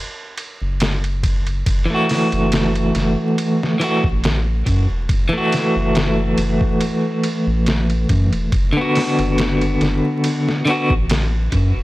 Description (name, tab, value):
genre	trip hop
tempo	70 BPM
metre	4/4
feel	swing 54% on 16ths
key	F# minor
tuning	A4 = 444 Hz
part	trip hop sampler-style drum kit	drums	0.4-11.7 s	hi-hat, kick drum, ride cymbal, snare drum	-22 LUFS	equal	none
part	round analog bass	bass	0.6-11.8 s	E1 to F#2	-20 LUFS	equal	none
part	electric guitar at the edge of break-up	accompaniment	1.9-10.9 s	D3 to F#4	-18 LUFS	equal	tremolo, vintage 12-bit sampler grit, tape echo
room	digital ambience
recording	dry, gritty hardware recording, transformer saturation, vinyl crackle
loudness	-16 LUFS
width	side -18 dB against mid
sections	0.0-11.8 A section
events	none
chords	0.0 N.C.; 1.7 F#m7; 8.5 Bm